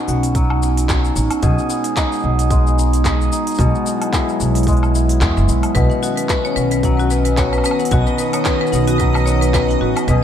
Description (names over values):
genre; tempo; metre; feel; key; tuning
folktronica; 111 BPM; 4/4; swing 56% on 16ths; B major; A4 = 440 Hz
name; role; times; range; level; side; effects
warbly tape-like pad; sustained chords; 0.0-10.2 s; D#3 to E4; -22 LUFS; right 1 dB; chorus, built-in reverb
hammered dulcimer; arpeggios; 0.0-10.2 s; B2 to G#4; -22 LUFS; left 2 dB; ping-pong delay
upright bass; bass; 0.1-10.2 s; F#1 to E2; -17 LUFS; equal; none
organic electronic drum kit; drums; 0.1-10.2 s; handclaps, hi-hat, shaker, woodblock; -25 LUFS; left 1 dB; none
electronic kick drum; drums; 0.3-10.2 s; none; -19 LUFS; equal; none
marimba with hard mallets; second line; 5.7-10.2 s; F#4 to F#5; -21 LUFS; left 3 dB; ping-pong delay
backwards swelling texture; texture; 6.5-10.2 s; D#5 to D#6; -28 LUFS; right 2 dB; built-in reverb, lush chorus
room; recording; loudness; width
moderate plate reverb, RT60 1.2 s, small room ambience; dreamy mix soaked in reverb; -14 LUFS; side -9 dB against mid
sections
0.0-10.2 A section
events
none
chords
0.0 Badd9; 1.4 G#m/B; 3.6 Eadd9/B; 5.8 Badd9